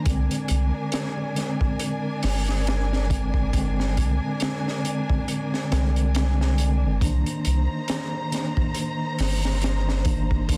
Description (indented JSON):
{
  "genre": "trip hop",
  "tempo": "69 BPM",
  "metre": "4/4",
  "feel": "swing 57% on 16ths",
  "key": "unclear",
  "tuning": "A4 = 440 Hz",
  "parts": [
    { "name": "mellow tine electric piano", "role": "accompaniment", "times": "0.0-10.6 s", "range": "D3 to D4", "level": "-31 LUFS", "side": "equal", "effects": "tremolo, tape echo" },
    { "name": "warm symphonic string section", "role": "sustained chords", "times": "0.0-10.6 s", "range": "Eb3 to C6", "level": "-35 LUFS", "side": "equal", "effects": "vintage 12-bit sampler grit" },
    { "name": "soft dub sub bass", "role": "bass", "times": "0.1-10.6 s", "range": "G1 to C2", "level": "-25 LUFS", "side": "equal", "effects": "none" },
    { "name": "crunchy breakbeat drum kit", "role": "drums", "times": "0.1-10.6 s", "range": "hi-hat, kick drum, snare drum", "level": "-29 LUFS", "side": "equal", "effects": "none" }
  ],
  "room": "small room ambience",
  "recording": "dense, heavily limited modern master",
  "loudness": "-24 LUFS",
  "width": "mono",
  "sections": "0.0-10.6 A section",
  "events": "none",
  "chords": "0.1 Bb7; 7.0 Cm7"
}